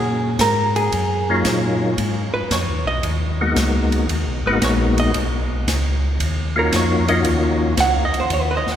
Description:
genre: soul jazz organ trio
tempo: 114 BPM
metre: 4/4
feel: swing 69% on 8ths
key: Eb minor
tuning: A4 = 440 Hz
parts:
  - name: vintage hollow-body jazz guitar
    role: accompaniment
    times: 0.0-8.8 s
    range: Ab4 to Gb5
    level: -23 LUFS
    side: right 2 dB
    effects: none
  - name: mellow tonewheel organ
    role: bass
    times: 0.0-8.7 s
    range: Ab1 to Bb2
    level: -21 LUFS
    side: equal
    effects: slow rotary speaker
  - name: open jazz drum kit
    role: drums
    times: 0.4-8.7 s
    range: hi-hat, kick drum, ride cymbal, snare drum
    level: -25 LUFS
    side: right 1 dB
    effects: none
  - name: percussive tonewheel organ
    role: melody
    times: 1.3-7.7 s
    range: Gb3 to Gb4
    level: -22 LUFS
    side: left 2 dB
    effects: slow rotary speaker, chorus vibrato
room: wet cathedral reverb, RT60 5.3 s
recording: recorded in a church or concert hall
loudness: -16 LUFS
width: side -10 dB against mid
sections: 0.0-8.8 A section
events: hollow-body jazz guitar solo 0.0-8.8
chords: 0.0 Ebm7; 2.0 Abm7; 6.2 Ebm7

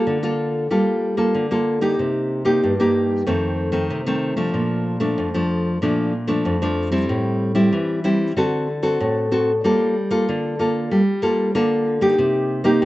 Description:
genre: samba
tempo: 94 BPM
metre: 4/4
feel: straight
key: G minor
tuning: A4 = 441 Hz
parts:
  - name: nylon-string guitar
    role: solo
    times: 0.0-12.8 s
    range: F2 to A4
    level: -18 LUFS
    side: equal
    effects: slapback echo
room: light reverb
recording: recorded outdoors, with no room sound, nothing above 8.0 kHz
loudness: -18 LUFS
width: side -16 dB against mid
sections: 0.0-9.6 A section; 9.6-12.8 B section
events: none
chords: 0.0 Gm9; 2.0 Cm7; 3.3 F7; 4.5 Bbmaj7; 7.1 Am7; 8.4 D7; 9.6 Gm9; 12.2 Cm7

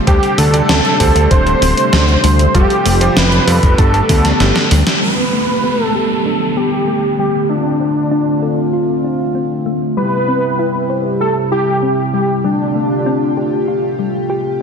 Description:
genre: synthwave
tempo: 97 BPM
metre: 4/4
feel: straight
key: unclear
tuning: A4 = 443 Hz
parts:
  - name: chorused pulse-width pad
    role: sustained chords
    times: 0.0-14.6 s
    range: C3 to G4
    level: -19 LUFS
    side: equal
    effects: sidechain pumping
  - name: thumb-piano-like synth pluck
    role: arpeggios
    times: 0.0-14.6 s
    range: G3 to C5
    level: -21 LUFS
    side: left 4 dB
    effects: chorus, ping-pong delay
  - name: wide unison lead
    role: melody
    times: 0.1-14.3 s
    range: D4 to C5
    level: -17 LUFS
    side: equal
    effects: cassette tape, ping-pong delay
  - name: clear electric grand piano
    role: stabs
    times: 0.1-4.6 s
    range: G2 to D5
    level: -21 LUFS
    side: right 2 dB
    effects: ping-pong delay
  - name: fat analog bass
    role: bass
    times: 0.1-4.8 s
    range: D1 to F2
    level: -13 LUFS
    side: equal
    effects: none
  - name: electronic kick drum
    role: drums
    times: 0.1-4.2 s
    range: none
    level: -13 LUFS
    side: equal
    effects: none
  - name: gated 80s digital drum machine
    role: drums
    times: 0.1-5.1 s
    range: crash cymbal, hi-hat, snare drum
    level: -17 LUFS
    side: equal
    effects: gated reverb, gated reverb snare, low-pass filter on hats, low-pass filter on snare, low-pass filter on cymbals, low-pass filter on room
  - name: downlifter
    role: sound effects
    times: 5.0-10.0 s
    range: none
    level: -22 LUFS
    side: right 2 dB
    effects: none
room: moderate concert hall reverb, RT60 2.0 s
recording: dense, heavily limited modern master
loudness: -12 LUFS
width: side -6 dB against mid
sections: 0.0-5.0 A section; 5.0-14.6 B section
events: drum fill 4.4-5.0; band accent 4.9-5.2; filter sweep on synth arpeggio sound 5.0-14.6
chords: 0.1 D7sus4; 2.5 Fadd9; 3.8 Gadd9; 7.5 Dm7; 10.0 C; 12.4 Fadd9

